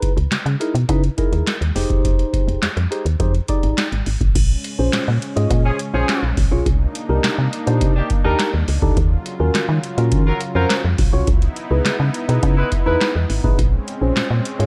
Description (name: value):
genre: early-eighties boogie funk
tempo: 104 BPM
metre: 4/4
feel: straight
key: Bb minor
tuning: A4 = 440 Hz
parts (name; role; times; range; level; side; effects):
- tine electric piano; accompaniment; 0.0-14.7 s; Db4 to Eb5; -26 LUFS; equal; phaser
- booming analog drum machine; drums; 0.0-14.7 s; crash cymbal, handclaps, hi-hat, kick drum, snare drum; -22 LUFS; equal; none
- woody FM bass; bass; 0.2-14.7 s; E1 to Eb3; -21 LUFS; equal; none
- warm analog pad; sustained chords; 4.3-14.7 s; Db3 to F4; -31 LUFS; equal; chorus
- clear horn section; second line; 5.7-13.0 s; Eb3 to Cb5; -27 LUFS; equal; none
room: digital ambience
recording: none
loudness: -18 LUFS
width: mono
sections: 0.0-4.4 A section; 4.4-14.7 B section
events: none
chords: 0.0 Dbm9; 1.8 Fm9; 4.4 Bbm9; 6.7 Cm9; 9.0 Ebm9; 11.3 Dbm9; 13.6 Bbm9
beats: 0.32 0.89 1.47 | 2.05 2.62 3.20 3.78 | 4.36 4.93 5.51 6.09 | 6.66 7.24 7.82 8.39 | 8.97 9.55 10.12 10.70 | 11.28 11.86 12.43 13.01 | 13.59 14.16